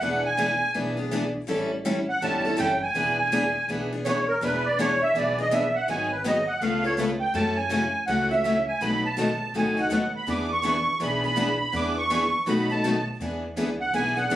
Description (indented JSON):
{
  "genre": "acoustic string swing (jazz manouche)",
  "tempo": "164 BPM",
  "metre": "4/4",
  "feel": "swing 63% on 8ths",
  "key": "E mixolydian",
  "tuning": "A4 = 439 Hz",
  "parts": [
    { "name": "musette accordion", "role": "second line", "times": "0.0-14.4 s", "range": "A#4 to D6", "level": "-24 LUFS", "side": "right 1 dB", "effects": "none" },
    { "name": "picked steel-string acoustic guitar", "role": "accompaniment", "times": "0.0-14.4 s", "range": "B2 to A4", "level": "-28 LUFS", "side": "left 3 dB", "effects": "none" },
    { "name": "picked steel-string acoustic guitar", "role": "accompaniment", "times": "0.0-14.4 s", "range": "B2 to B4", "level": "-30 LUFS", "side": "right 1 dB", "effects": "none" },
    { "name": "upright bass", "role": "bass", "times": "0.0-14.4 s", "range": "E1 to F#2", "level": "-35 LUFS", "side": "equal", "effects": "none" }
  ],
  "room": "wet studio reverb, RT60 0.8 s",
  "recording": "recorded on a phone in the room, studio reverb",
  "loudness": "-22 LUFS",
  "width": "side -13 dB against mid",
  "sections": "0.0-13.2 A section; 13.2-14.4 A section",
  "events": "accordion solo 0.0-14.4",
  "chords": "0.0 E7; 1.5 A7; 3.0 E7; 5.9 G#m7; 6.6 C#aug7; 7.3 F#m7; 8.8 B7; 10.3 E7; 12.5 B7; 13.2 E7",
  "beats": "| 0.02 0.39 0.76 1.12 | 1.49 1.86 2.22 2.59 | 2.96 3.32 3.69 4.05 | 4.42 4.79 5.15 5.52 | 5.89 6.25 6.62 6.98 | 7.35 7.71 8.08 8.45 | 8.81 9.18 9.54 9.91 | 10.28 10.64 11.01 11.38 | 11.74 12.11 12.47 12.84 | 13.21 13.57 13.94 14.31"
}